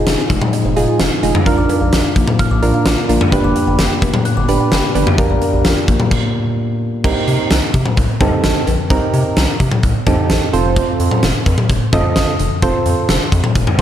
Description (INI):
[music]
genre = synth-pop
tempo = 129 BPM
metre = 4/4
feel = straight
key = C dorian from 7.0 s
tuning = A4 = 439 Hz
[part]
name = soft electric-piano-like synth keys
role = accompaniment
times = 0.0-13.8 s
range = C4 to Eb5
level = -19 LUFS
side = right 3 dB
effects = chorus
[part]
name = kalimba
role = arpeggios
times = 0.0-6.1 s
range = F3 to F#6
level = -21 LUFS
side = left 3 dB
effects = tape echo
[part]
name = round analog bass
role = bass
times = 0.0-13.8 s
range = F1 to C3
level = -18 LUFS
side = equal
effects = none
[part]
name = huge arena drum kit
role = drums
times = 0.1-13.8 s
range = cowbell, crash cymbal, hi-hat, kick drum, snare drum, toms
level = -15 LUFS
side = left 1 dB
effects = none
[sound]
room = moderate concert hall reverb, RT60 2.6 s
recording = big arena sound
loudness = -12 LUFS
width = side -10 dB against mid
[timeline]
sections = 0.0-7.0 A section; 7.0-13.8 B section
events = stop 6.1-7.0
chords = 0.0 Fm7; 1.5 Bb; 3.3 G; 5.2 Bb6; 7.0 Cm7; 10.5 F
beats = 0.07 0.53 1.00 | 1.46 1.93 2.39 2.86 | 3.32 3.79 4.25 4.72 | 5.18 5.65 6.11 6.58 | 7.04 7.51 7.97 8.44 | 8.90 9.37 9.83 10.30 | 10.76 11.23 11.70 12.16 | 12.62 13.09 13.55